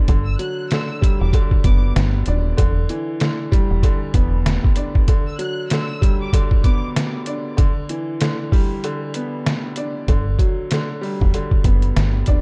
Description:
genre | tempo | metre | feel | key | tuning
hip hop, boom-bap hip-hop | 96 BPM | 4/4 | swing 58% on 16ths | G major | A4 = 439 Hz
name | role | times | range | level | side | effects
bright upright piano | accompaniment | 0.0-12.4 s | D3 to D4 | -27 LUFS | equal | high-pass filter, low-pass filter
deep dub fingered electric bass | bass | 0.1-4.6, 10.1-12.4 s | Eb1 to G1 | -21 LUFS | equal | none
trip hop sampler-style drum kit | drums | 0.1-12.4 s | hi-hat, kick drum, snare drum | -20 LUFS | equal | none
warm studio violin section | melody | 0.2-6.8 s | D6 to F#6 | -36 LUFS | equal | high-pass filter, low-pass filter, delay
room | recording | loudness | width
small room ambience | dark, warm production | -19 LUFS | mono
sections
0.0-10.1 A section; 10.1-12.4 B section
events
break 5.1-10.1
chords
0.1 Gmaj7; 2.6 Em7; 5.1 Gmaj7; 7.6 Em7; 10.1 Gmaj7

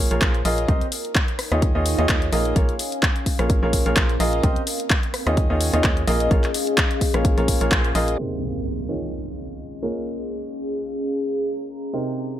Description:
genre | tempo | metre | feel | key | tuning
piano house | 128 BPM | 4/4 | swing 55% on 16ths | Bb dorian | A4 = 439 Hz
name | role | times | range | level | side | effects
clear baby grand piano | riff | 0.0-12.4 s | C3 to Eb5 | -25 LUFS | right 1 dB | sidechain pumping, ping-pong delay
organ-like FM bass | bass | 0.0-8.2 s | Bb1 to Eb2 | -24 LUFS | equal | sidechain pumping
deep dark ambient pad | texture | 0.3-12.4 s | Db4 to Bb5 | -28 LUFS | left 1 dB | chorus, built-in reverb, sidechain pumping
house drum kit | drums | 0.1-8.2 s | handclaps, hi-hat, rim click | -24 LUFS | left 1 dB | low-pass filter on hats, low-pass filter on snare
electronic kick drum | drums | 0.2-7.8 s | none | -21 LUFS | equal | none
impact | sound effects | 8.2-10.1 s | none | -32 LUFS | equal | none
room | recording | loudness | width
light reverb | low-pass filter | -19 LUFS | side -12 dB against mid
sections
0.0-8.2 A section; 8.2-12.4 B section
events
fade-in on ambient pad 0.0-8.2; band accent 7.7; impact 8.2-10.1; filter sweep 8.2-12.4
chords
0.0 Bbm7; 0.7 Cm7; 1.4 Eb9sus4; 2.3 Bbm7; 4.4 Cm7; 5.1 Eb9sus4; 6.1 Bbm7; 8.2 Cm7; 8.9 Eb9sus4; 9.8 Bbm7

